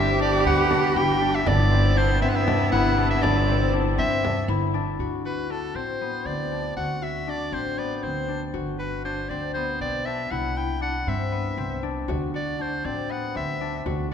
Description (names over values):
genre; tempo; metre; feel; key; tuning
contemporary instrumental, chamber music in an uneven meter; 237 BPM (eighths); 7/8; straight; D mixolydian; A4 = 441 Hz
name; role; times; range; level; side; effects
bright soprano saxophone; melody; 0.0-13.8 s; A4 to G5; -28 LUFS; equal; none
warm cello; second line; 0.0-4.7 s; B3 to G4; -26 LUFS; right 3 dB; none
rich chamber string section; sustained chords; 0.0-5.0 s; C3 to E4; -31 LUFS; right 2 dB; none
concert harp; arpeggios; 0.0-14.1 s; B3 to F#4; -27 LUFS; left 6 dB; none
upright bass; bass; 0.0-14.1 s; G1 to G2; -27 LUFS; right 1 dB; none
frame drum; percussion; 0.5-4.5, 12.1-14.1 s; none; -35 LUFS; right 2 dB; none
room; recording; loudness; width
wet concert hall reverb, RT60 2.2 s; minimal, uncompressed stereo recording; -22 LUFS; side -8 dB against mid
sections
0.0-5.0 A section; 5.0-14.1 B section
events
none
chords
0.0 Cmaj7/G; 5.0 D7; 8.5 Gmaj7; 10.3 Cmaj7; 12.1 D7